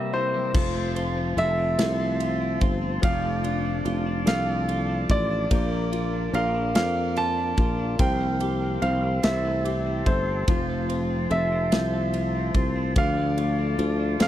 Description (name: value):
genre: six-eight pop ballad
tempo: 48 BPM (dotted quarters)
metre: 6/8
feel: straight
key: F major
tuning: A4 = 436 Hz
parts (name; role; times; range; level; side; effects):
- warm concert grand piano; melody; 0.0-14.3 s; C5 to A5; -28 LUFS; right 1 dB; none
- warm concert grand piano; accompaniment; 0.0-14.3 s; C3 to Bb4; -31 LUFS; left 7 dB; none
- tonewheel organ; sustained chords; 0.0-14.3 s; F4 to E6; -34 LUFS; equal; overdrive, slow rotary speaker
- twelve-string electric guitar; arpeggios; 0.0-14.3 s; E3 to G4; -34 LUFS; right 5 dB; none
- sustaining fretless electric bass; bass; 0.5-14.3 s; F1 to F2; -27 LUFS; equal; none
- modern studio drum kit; drums; 0.5-14.3 s; crash cymbal, kick drum, ride cymbal, snare drum; -24 LUFS; equal; none
room: little or no reverb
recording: dry, close 1970s-style studio recording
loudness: -22 LUFS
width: side -12 dB against mid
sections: 0.5-14.3 A section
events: break 0.0-0.5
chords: 0.0 C7; 0.5 F; 3.0 Dm/F; 5.5 Bb; 8.0 C7sus4; 9.2 C6; 10.5 F; 13.0 Dm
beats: | 0.54 1.78 | 3.03 4.27 | 5.51 6.75 | 7.99 9.24 | 10.48 11.72 | 12.96 14.20